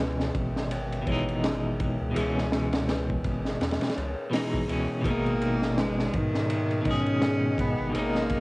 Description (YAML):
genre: trip hop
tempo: 83 BPM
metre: 4/4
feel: swing 57% on 16ths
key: unclear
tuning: A4 = 441 Hz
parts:
  - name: clean electric guitar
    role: accompaniment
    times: 0.0-8.4 s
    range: B2 to G#4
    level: -29 LUFS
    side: equal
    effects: tremolo, vintage 12-bit sampler grit, cassette tape, tape echo
  - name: dark detuned synth bell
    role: arpeggios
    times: 0.0-8.4 s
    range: G#4 to D#5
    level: -37 LUFS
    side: left 2 dB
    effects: chorus, cassette tape, analog delay
  - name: round analog bass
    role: bass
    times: 0.0-8.4 s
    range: G#1 to G#2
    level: -33 LUFS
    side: equal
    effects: none
  - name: crunchy breakbeat drum kit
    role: drums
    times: 0.2-8.4 s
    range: hi-hat, kick drum, ride cymbal, snare drum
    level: -30 LUFS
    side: equal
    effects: cassette tape
  - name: bright cello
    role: melody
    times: 5.1-8.4 s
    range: D#3 to C#4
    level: -28 LUFS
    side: equal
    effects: vintage 12-bit sampler grit, cassette tape, tape echo
  - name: deep dark ambient pad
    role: sustained chords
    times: 6.6-8.4 s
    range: D#5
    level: -41 LUFS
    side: right 1 dB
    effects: none
room: light reverb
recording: home recording on cassette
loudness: -24 LUFS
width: side -24 dB against mid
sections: 0.0-8.4 A section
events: filter sweep on synth bell 0.0-8.4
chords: 0.0 C#m7; 5.0 G#m